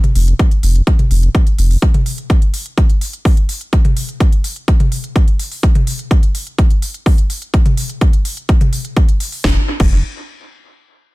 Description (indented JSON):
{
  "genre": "melodic techno",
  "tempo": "126 BPM",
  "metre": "4/4",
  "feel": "straight",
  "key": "unclear",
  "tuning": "A4 = 440 Hz",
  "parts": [
    { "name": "techno drum kit", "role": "drums", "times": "0.0-9.9 s", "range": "crash cymbal, hi-hat, snare drum, toms", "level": "-23 LUFS", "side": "left 1 dB", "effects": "overdrive, small room ambience, dub echo" },
    { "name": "round analog bass", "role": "bass", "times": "0.2-1.8, 9.4-10.0 s", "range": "F1", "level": "-12 LUFS", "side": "equal", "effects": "sidechain pumping" },
    { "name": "electronic kick drum", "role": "drums", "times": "0.4-9.9 s", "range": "none", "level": "-12 LUFS", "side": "equal", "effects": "overdrive, small room ambience" }
  ],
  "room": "little or no reverb",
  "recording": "echo-heavy mix",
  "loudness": "-12 LUFS",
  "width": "side -21 dB against mid",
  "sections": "0.0-9.4 A section; 9.4-11.1 B section",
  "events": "none",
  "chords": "none"
}